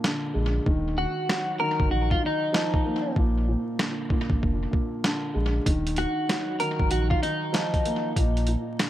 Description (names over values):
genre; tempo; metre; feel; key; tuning
hip hop, boom-bap hip-hop; 96 BPM; 4/4; swing 62% on 16ths; Eb harmonic minor; A4 = 439 Hz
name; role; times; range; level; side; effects
dark upright piano; accompaniment; 0.0-8.9 s; Bb2 to Bb3; -29 LUFS; equal; high-pass filter, low-pass filter, tape echo
boom bap sampler-style drum kit; drums; 0.0-8.9 s; hi-hat, kick drum, snare drum; -26 LUFS; equal; tape echo
sub bass with octave; bass; 0.4-8.6 s; Eb1 to Bb1; -26 LUFS; equal; none
clean electric guitar; melody; 1.0-8.1 s; Eb4 to Bb4; -28 LUFS; equal; wide subtle chorus, high-pass filter, low-pass filter, tape echo
room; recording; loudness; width
light reverb; echo-heavy mix, vinyl crackle; -23 LUFS; side -13 dB against mid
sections
0.0-8.9 A section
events
break 0.0-5.7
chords
0.0 Bb7; 0.7 Ebmadd9; 3.2 Bb7; 5.7 Ebmadd9; 8.2 Bb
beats
0.04 | 0.66 1.29 1.91 2.54 | 3.16 3.79 4.41 5.04 | 5.66 6.29 6.91 7.54 | 8.16 8.79